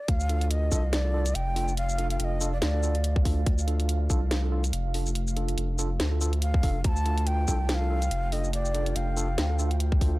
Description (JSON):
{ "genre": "deep dubstep", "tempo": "142 BPM", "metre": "4/4", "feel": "swing 56% on 16ths, half-time", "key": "D minor", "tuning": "A4 = 439 Hz", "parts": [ { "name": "breathy bright ney", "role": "melody", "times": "0.0-3.2, 6.4-9.8 s", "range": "D5 to Bb5", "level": "-33 LUFS", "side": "equal", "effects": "dub echo" }, { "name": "deep dark ambient pad", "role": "sustained chords", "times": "1.0-10.2 s", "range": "A3 to G5", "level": "-39 LUFS", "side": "right 1 dB", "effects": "chorus, built-in reverb" }, { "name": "saturated sub bass", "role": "bass", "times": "0.1-10.2 s", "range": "F1 to D2", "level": "-26 LUFS", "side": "equal", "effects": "none" }, { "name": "electronic kick drum", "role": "drums", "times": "0.1-10.1 s", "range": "none", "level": "-25 LUFS", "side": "equal", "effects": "none" }, { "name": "garage drum kit", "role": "drums", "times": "0.1-10.1 s", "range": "hi-hat, shaker, snare drum", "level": "-32 LUFS", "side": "equal", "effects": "none" }, { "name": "mellow tine electric piano", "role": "stabs", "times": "0.3-10.2 s", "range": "D4 to A4", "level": "-36 LUFS", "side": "right 2 dB", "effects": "medium stereo tremolo, dub echo" } ], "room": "little or no reverb", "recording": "dry, gritty hardware recording", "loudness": "-24 LUFS", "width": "side -19 dB against mid", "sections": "0.1-10.2 A section", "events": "drop 0.1-10.2", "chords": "0.1 Dm", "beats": "| 0.08 0.51 0.93 1.35 | 1.77 2.20 2.62 3.04 | 3.46 3.89 4.31 4.73 | 5.15 5.58 6.00 6.42 | 6.84 7.27 7.69 8.11 | 8.53 8.96 9.38 9.80" }